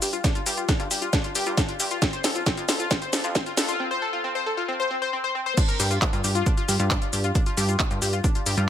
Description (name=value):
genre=uplifting trance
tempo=135 BPM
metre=4/4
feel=straight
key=unclear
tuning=A4 = 440 Hz
part: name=analog pluck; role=arpeggios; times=0.0-8.6 s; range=C4 to C5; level=-27 LUFS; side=left 3 dB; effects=chorus, sidechain pumping, digital delay
part: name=plucky analog bass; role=bass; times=0.0-8.7 s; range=F2 to G2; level=-27 LUFS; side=right 1 dB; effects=tube saturation, sidechain pumping, high-pass filter
part: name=techno drum kit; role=drums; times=0.0-8.7 s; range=crash cymbal, handclaps, hi-hat, shaker, snare drum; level=-25 LUFS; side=equal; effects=none
part: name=electronic kick drum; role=drums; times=0.2-8.3 s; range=none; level=-24 LUFS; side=equal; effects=none
room=light reverb, digital ambience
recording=high-pass filter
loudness=-22 LUFS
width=side -10 dB against mid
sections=0.0-5.6 A section; 5.6-8.7 B section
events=build-up 0.0-5.6; drum fill 0.0-3.8; break 3.8-5.6; drop 5.6-8.7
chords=0.0 G7(no3); 2.0 F5; 5.6 G7(no3)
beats=| 0.24 0.69 1.13 1.57 | 2.02 2.46 2.91 3.35 | 3.80 4.24 4.69 5.13 | 5.58 6.02 6.46 6.91 | 7.35 7.80 8.24 8.69